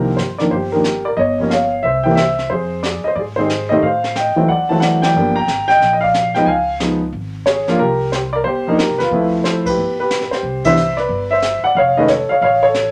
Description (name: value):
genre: jazz piano trio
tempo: 182 BPM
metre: 4/4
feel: swing 64% on 8ths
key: unclear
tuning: A4 = 440 Hz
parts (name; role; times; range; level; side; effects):
- warm upright piano; melody; 0.0-12.9 s; C2 to Bb5; -17 LUFS; equal; none
- upright bass; bass; 0.0-12.9 s; F1 to A2; -28 LUFS; equal; none
- jazz brush drum kit; drums; 0.2-12.9 s; brushed snare drum, hi-hat, kick drum, ride cymbal, snare drum; -29 LUFS; equal; none
room: moderate studio ambience, RT60 0.5 s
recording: none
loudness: -16 LUFS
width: mono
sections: 0.0-10.4 A section; 10.4-12.9 B section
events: band accent 5.0, 9.6, 10.6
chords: 0.0 Cm11; 1.2 G7(b5, no3); 1.8 C; 2.5 Fm7; 3.8 Am7b5; 4.5 D7; 5.2 Gm7; 6.5 Db; 7.8 C7(no3); 9.1 Dm7; 9.8 G; 10.4 Cmaj9; 11.8 Faug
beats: 0.18 0.52 0.85 | 1.18 1.51 1.84 2.17 | 2.50 2.84 3.17 3.50 | 3.83 4.16 4.49 4.82 | 5.15 5.48 5.81 6.14 | 6.47 6.80 7.14 7.47 | 7.80 8.13 8.46 8.79 | 9.12 9.45 9.78 10.11 | 10.44 10.77 11.10 11.43 | 11.76 12.09 12.42 12.75